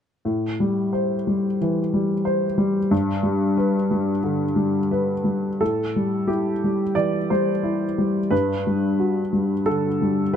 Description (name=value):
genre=neoclassical minimalist piano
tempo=89 BPM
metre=4/4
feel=rubato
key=A dorian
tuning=A4 = 440 Hz
part: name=warm upright piano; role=solo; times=0.2-10.4 s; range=G2 to D5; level=-20 LUFS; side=left 1 dB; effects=none
room=little or no reverb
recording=close, detailed microphones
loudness=-20 LUFS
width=side -8 dB against mid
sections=0.3-5.6 A section; 5.6-10.4 B section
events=none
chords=0.3 Am7; 2.9 G; 5.6 Am7; 8.3 Gmaj7